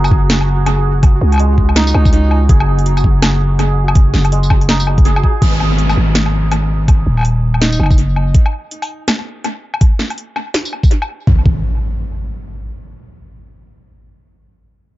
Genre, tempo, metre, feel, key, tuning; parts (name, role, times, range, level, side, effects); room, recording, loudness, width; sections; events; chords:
half-time drum and bass; 164 BPM; 4/4; swing 60% on 16ths, half-time; A4 = 439 Hz
santur; arpeggios; 0.0-8.3 s; G#3 to G#5; -24 LUFS; right 5 dB; analog delay
growling 808-style bass; bass; 0.0-8.3, 11.3-11.6 s; D#1 to C#2; -13 LUFS; equal
drum and bass drum kit; drums; 0.0-11.1 s; crash cymbal, hi-hat, snare drum, tambourine, woodblock; -19 LUFS; left 1 dB; analog delay
pulsing gated texture; texture; 0.0-5.4 s; F#4; -26 LUFS; right 1 dB; chorus, built-in reverb
electronic kick drum; drums; 0.1-11.5 s; -11 LUFS; equal; overdrive
warm alto saxophone; melody; 1.8-2.4, 7.6-8.0 s; D#4; -25 LUFS; right 2 dB; analog delay
downlifter and impact; sound effects; 5.4-8.3, 11.3-12.7 s; -22 LUFS; equal
little or no reverb; echo-heavy mix, nothing above 7.5 kHz; -11 LUFS; side -16 dB against mid
0.0-5.4 A section; 5.4-11.3 B section; 11.3-12.7 C section
drop 0.0-5.4
0.0 F#sus2; 5.4 G#5; 11.3 N.C.